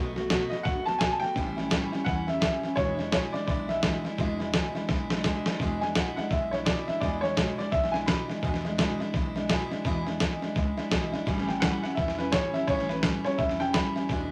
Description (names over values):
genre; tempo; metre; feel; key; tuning
rockabilly; 169 BPM; 4/4; swing 61% on 8ths; E mixolydian; A4 = 440 Hz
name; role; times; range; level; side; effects
picked steel-string acoustic guitar; accompaniment; 0.0-14.3 s; E2 to F#4; -33 LUFS; equal; none
upright bass; bass; 0.0-14.3 s; E1 to E2; -40 LUFS; equal; none
dusty soul sampler-style drum kit; drums; 0.2-14.2 s; hi-hat, kick drum, snare drum; -31 LUFS; equal; none
warm upright piano; melody; 0.5-8.7, 11.5-14.3 s; B4 to B5; -33 LUFS; equal; none
room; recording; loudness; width
wet small room reverb, RT60 0.5 s; none; -28 LUFS; mono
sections
0.0-5.6 A section; 5.6-14.3 A section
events
drum fill 4.9-5.6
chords
0.0 B7; 1.4 A7; 2.8 E7; 11.3 A7